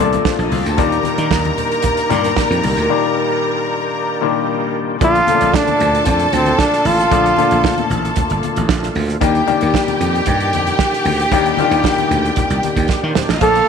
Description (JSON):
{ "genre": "disco", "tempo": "114 BPM", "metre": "4/4", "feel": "straight", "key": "unclear", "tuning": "A4 = 440 Hz", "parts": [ { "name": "clear studio string section", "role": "second line", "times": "0.0-13.7 s", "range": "Bb3 to Bb5", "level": "-20 LUFS", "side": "left 1 dB", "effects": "none" }, { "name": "clear baby grand piano", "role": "accompaniment", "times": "0.0-13.6 s", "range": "Bb2 to A4", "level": "-20 LUFS", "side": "left 11 dB", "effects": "none" }, { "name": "overdriven tonewheel organ", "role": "sustained chords", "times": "0.0-13.7 s", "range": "Bb2 to A4", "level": "-24 LUFS", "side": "right 2 dB", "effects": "chorus vibrato, slow rotary speaker" }, { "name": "slap bass", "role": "bass", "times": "0.0-13.6 s", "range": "G1 to Eb3", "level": "-19 LUFS", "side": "right 2 dB", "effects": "none" }, { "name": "congas", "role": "percussion", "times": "0.0-13.7 s", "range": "none", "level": "-27 LUFS", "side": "left 8 dB", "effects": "none" }, { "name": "warm soul drum kit", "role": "drums", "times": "0.1-13.7 s", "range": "hi-hat, kick drum, snare drum", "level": "-20 LUFS", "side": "right 5 dB", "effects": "none" }, { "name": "bright trombone", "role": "melody", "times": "5.0-7.9, 13.4-13.7 s", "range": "C4 to A4", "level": "-14 LUFS", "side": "right 2 dB", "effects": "none" } ], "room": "moderate echo chamber reverb, RT60 1.8 s, small room reverb", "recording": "1960s-style stereo", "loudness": "-13 LUFS", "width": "side -6 dB against mid", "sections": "0.0-5.0 A section; 5.0-13.7 B section", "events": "break 2.9-5.0; drum fill 12.9-13.4", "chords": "0.0 Bbmaj7; 0.8 Ebmaj7; 5.0 Bbmaj7; 9.2 Ebmaj7" }